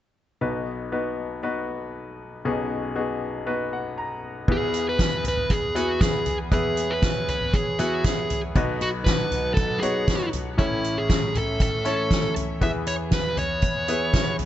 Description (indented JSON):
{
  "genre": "piano-driven pop",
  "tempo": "118 BPM",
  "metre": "4/4",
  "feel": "straight",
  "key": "B major",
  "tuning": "A4 = 440 Hz",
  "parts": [
    { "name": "bright concert grand piano", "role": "accompaniment", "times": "0.4-14.5 s", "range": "A1 to A#5", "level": "-28 LUFS", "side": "left 2 dB", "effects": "none" },
    { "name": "dark smooth lead guitar", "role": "melody", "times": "4.5-14.4 s", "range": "E4 to E5", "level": "-26 LUFS", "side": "right 1 dB", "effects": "overdrive" },
    { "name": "dark studio string section", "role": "sustained chords", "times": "4.5-14.5 s", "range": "E2 to F#5", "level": "-33 LUFS", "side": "right 1 dB", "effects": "none" },
    { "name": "soft-mallet drum kit", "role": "drums", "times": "4.5-14.5 s", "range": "crash cymbal, hi-hat, kick drum, snare drum, toms", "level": "-24 LUFS", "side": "equal", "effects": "none" }
  ],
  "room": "light reverb, studio ambience",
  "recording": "nothing above 7.9 kHz",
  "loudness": "-22 LUFS",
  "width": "side -12 dB against mid",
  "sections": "0.4-4.5 A section; 4.5-14.5 B section",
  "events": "grand piano fill 3.5-4.5",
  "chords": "0.4 B; 4.5 E; 8.6 B; 10.6 A; 12.6 E",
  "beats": "| 0.41 0.92 1.43 1.94 | 2.45 2.96 3.47 3.98 | 4.48 4.99 5.50 6.01 | 6.52 7.03 7.53 8.04 | 8.55 9.06 9.57 10.07 | 10.58 11.09 11.60 12.11 | 12.61 13.12 13.63 14.14"
}